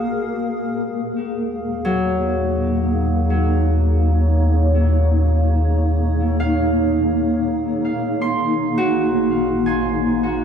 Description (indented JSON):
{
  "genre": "ambient",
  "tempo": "free time",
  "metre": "none",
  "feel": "none",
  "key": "unclear",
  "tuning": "A4 = 442 Hz",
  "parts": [
    { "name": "granular cloud pad", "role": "sustained chords", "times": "0.0-10.4 s", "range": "Bb3 to F5", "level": "-20 LUFS", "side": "equal", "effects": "built-in reverb" },
    { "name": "deep rumbling drone", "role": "bass", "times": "1.9-10.4 s", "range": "Ab1 to Eb2", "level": "-19 LUFS", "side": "equal", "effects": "built-in reverb" },
    { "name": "Celtic harp", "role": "arpeggios", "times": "1.8-10.4 s", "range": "Gb3 to C6", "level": "-25 LUFS", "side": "left 2 dB", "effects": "tape echo" }
  ],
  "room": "wet cathedral reverb, RT60 4.9 s",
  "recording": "dark, warm production",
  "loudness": "-17 LUFS",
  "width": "side -7 dB against mid",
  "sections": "0.3-10.4 A section",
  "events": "filter sweep on ambient pad 0.3-10.4",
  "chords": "0.3 Ebm7; 8.1 Ab7"
}